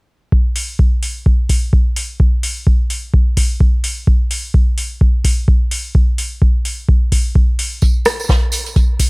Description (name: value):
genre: house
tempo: 128 BPM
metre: 4/4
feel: swing 57% on 16ths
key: none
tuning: none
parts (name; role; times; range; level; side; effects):
- electronic kick drum; drums; 0.3-9.1 s; none; -13 LUFS; equal; overdrive
- electro analog drum machine; drums; 0.6-9.1 s; hi-hat, rim click; -21 LUFS; equal; overdrive
- compact cocktail drum kit; drums; 7.8-9.1 s; hi-hat, snare drum; -26 LUFS; right 2 dB; high-pass filter on hats, high-pass filter on snare, high-pass filter on room
- tambourine; percussion; 7.8-9.1 s; none; -25 LUFS; right 3 dB; none
room: little or no reverb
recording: none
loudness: -13 LUFS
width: side -30 dB against mid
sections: 0.3-9.1 A section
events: none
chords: none